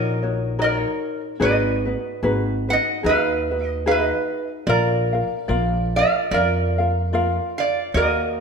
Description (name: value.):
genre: Hawaiian.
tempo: 73 BPM.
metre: 4/4.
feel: swing 56% on 8ths.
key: unclear.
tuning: A4 = 441 Hz.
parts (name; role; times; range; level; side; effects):
metal-body resonator slide guitar; melody; 0.0-8.4 s; Bb4 to Gb5; -22 LUFS; right 3 dB; none.
ukulele; accompaniment; 0.0-8.4 s; Eb4 to F5; -24 LUFS; left 3 dB; none.
upright bass; bass; 0.0-8.4 s; Ab1 to F2; -24 LUFS; equal; none.
room: moderate recital hall reverb, RT60 1.4 s.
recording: none.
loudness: -19 LUFS.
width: side -5 dB against mid.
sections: 0.0-8.4 A section.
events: none.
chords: 0.0 Ebm7; 1.4 Abm7; 4.7 Bb.